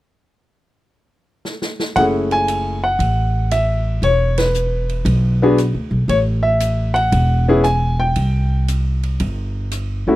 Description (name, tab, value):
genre	jazz piano trio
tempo	116 BPM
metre	4/4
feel	swing 68% on 8ths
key	F# minor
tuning	A4 = 440 Hz
part	open jazz drum kit	drums	1.4-9.9 s	hi-hat, ride cymbal, rim click, snare drum	-31 LUFS	right 1 dB	none
part	warm baby grand piano	melody	2.0-10.2 s	A3 to G#5	-17 LUFS	left 1 dB	none
part	upright bass	bass	2.0-10.2 s	E1 to D#2	-18 LUFS	equal	none
room	studio reverb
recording	dry, close 1970s-style studio recording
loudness	-15 LUFS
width	side -16 dB against mid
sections	0.0-2.0 A section; 2.0-10.2 B section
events	drum fill 1.4-2.0; band accent 4.3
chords	0.0 N.C.; 2.0 F#m9; 4.0 E5; 6.1 Amaj7(no3); 8.2 C5